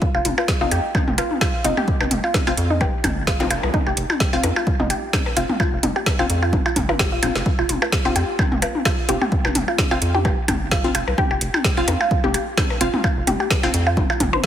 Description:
minimal techno; 129 BPM; 4/4; swing 55% on 16ths; A4 = 439 Hz
electronic kick drum; drums; 0.0-14.5 s; -22 LUFS; equal
resonant blip pluck; riff; 0.1-14.5 s; Eb4 to C5; -25 LUFS; right 1 dB; phaser, sidechain pumping, dub echo
rubbery square bass; bass; 0.1-14.5 s; Eb1 to F2; -24 LUFS; equal; sidechain pumping
electronic percussion blips and toms; percussion; 0.1-14.5 s; -24 LUFS; left 1 dB; tape echo
garage drum kit; drums; 0.2-14.5 s; hi-hat, snare drum; -24 LUFS; right 1 dB; overdrive
wavetable chord stab; stabs; 0.6-13.7 s; C4 to F5; -27 LUFS; left 3 dB; tape echo
zap; sound effects; 3.4-3.5 s; -30 LUFS; equal
light reverb, digital ambience; heavily compressed radio sound, multiband compression; -17 LUFS; side -10 dB against mid
0.0-14.5 A section
0.0 F5
| 0.02 0.48 0.95 1.41 | 1.88 2.34 2.81 3.27 | 3.74 4.20 4.67 5.13 | 5.60 6.06 6.53 6.99 | 7.46 7.92 8.39 8.85 | 9.32 9.79 10.25 10.71 | 11.18 11.64 12.11 12.57 | 13.04 13.51 13.97 14.44

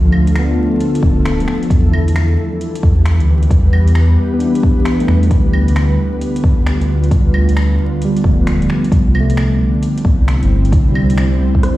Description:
future garage; 133 BPM; 4/4; swing 65% on 16ths; A4 = 440 Hz
bell-like tine electric piano; accompaniment; 0.0-11.8 s; F3 to E4; -20 LUFS; equal; fast stereo tremolo, sidechain pumping, low-pass filter, analog delay
ethereal airy pad; sustained chords; 0.0-11.8 s; D3 to C5; -18 LUFS; equal; ensemble chorus, built-in reverb, sidechain pumping
dark detuned saw bass; bass; 0.0-11.4 s; D1 to E2; -13 LUFS; equal; tube saturation, sidechain pumping
deep house drum kit; drums; 0.1-11.7 s; claves, finger snaps, hi-hat, rim click; -27 LUFS; equal; vintage 12-bit sampler grit, studio reverb
electronic kick drum; drums; 1.0-11.6 s; -12 LUFS; equal; vintage 12-bit sampler grit, studio reverb
light reverb; played on a big sound system in a bare room, stone room reverb, vinyl crackle; -11 LUFS; side -16 dB against mid
0.0-11.8 A section
filter sweep on tine electric piano 0.0-11.8
0.0 Dm; 1.7 Em; 5.3 G7/D; 8.9 Cadd9
0.35 0.80 1.25 | 1.70 2.15 2.60 3.06 | 3.51 3.96 4.41 4.86 | 5.31 5.76 6.21 6.67 | 7.12 7.57 8.02 8.47 | 8.92 9.37 9.82 10.27 | 10.73 11.18 11.63

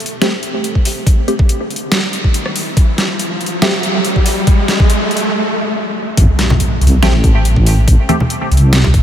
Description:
deep dubstep; 141 BPM; 4/4; swing 54% on 16ths, half-time; A minor; A4 = 442 Hz
dubstep drum kit; drums; 0.0-9.0 s; hi-hat, rim click, snare drum; -18 LUFS; equal; overdrive
riser and impact; sound effects; 0.0-7.9 s; -20 LUFS; equal
filtered dub chord stab; stabs; 0.2-3.7, 7.0-8.2 s; A3 to G4; -22 LUFS; equal; phaser, dub echo
electronic kick drum; drums; 0.8-9.0 s; -11 LUFS; equal; overdrive
deep soft wobble bass; bass; 6.2-9.0 s; A1 to C2; -10 LUFS; equal; chorus
congas; percussion; 6.5-8.9 s; -20 LUFS; left 1 dB; dub echo
moderate huge ambient reverb, RT60 8.3 s; dreamy mix soaked in reverb; -11 LUFS; side -10 dB against mid
0.0-6.2 A section; 6.2-9.0 B section
build-up 0.0-6.2; riser 0.0-5.3; break 5.3-6.2; drop 6.2-9.0; impact 6.2-7.9
0.0 Am7; 6.2 Am
0.22 0.64 | 1.07 1.49 1.92 2.34 | 2.77 3.19 3.62 4.05 | 4.47 4.90 5.32 5.75 | 6.17 6.60 7.03 7.45 | 7.88 8.30 8.73

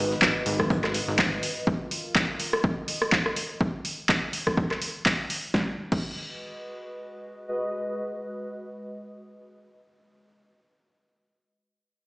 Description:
piano house; 124 BPM; 4/4; swing 56% on 16ths; G# dorian; A4 = 440 Hz
plucky analog bass; bass; 0.0-1.4 s; G#1; -29 LUFS; equal; sidechain pumping
warbly tape-like pad; texture; 0.0-9.7 s; G#3 to D#5; -35 LUFS; equal; chorus, built-in reverb, sidechain pumping
jazz brush drum kit; drums; 0.1-1.6 s; hi-hat, snare drum; -39 LUFS; equal
electronic kick drum; drums; 0.2-6.1 s; -27 LUFS; equal; overdrive
punchy analog drum machine; drums; 0.2-6.1 s; crash cymbal, handclaps, hi-hat, rim click, snare drum; -26 LUFS; equal; overdrive
moderate digital room reverb, RT60 1.1 s, small room ambience; played on a big sound system in a bare room, stone room reverb, small speaker sound; -24 LUFS; side -26 dB against mid
0.0-5.5 A section; 5.5-9.4 B section
fade-out on ambient pad 0.0-3.6
0.0 G#m7; 1.4 F7sus4; 3.4 F#6; 5.5 G#m7
0.22 0.70 1.19 | 1.67 2.15 2.64 3.12 | 3.60 4.09 4.57 5.06 | 5.54 6.03 6.51 6.99 | 7.48 7.96 8.44 8.93

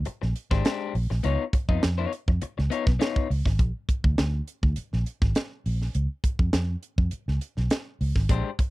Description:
funk; 102 BPM; 4/4; straight; A4 = 441 Hz
vintage muted fingered electric bass; bass; 0.0-8.4 s; Ab1 to F2; -25 LUFS; equal
electric guitar at the edge of break-up; accompaniment; 0.1-3.5, 8.3-8.6 s; Ab3 to Eb5; -30 LUFS; left 8 dB
tight funk drum kit; drums; 0.1-8.7 s; hi-hat, kick drum, snare drum; -25 LUFS; equal
little or no reverb; dry, close 1970s-style studio recording; -23 LUFS; side -19 dB against mid
0.0-8.7 A section
0.0 Bb13; 1.2 Db9; 3.6 Bb; 5.9 Db
0.06 0.65 | 1.24 1.82 2.41 3.00 | 3.59 4.17 4.76 5.35 | 5.94 6.53 7.12 7.71 | 8.30

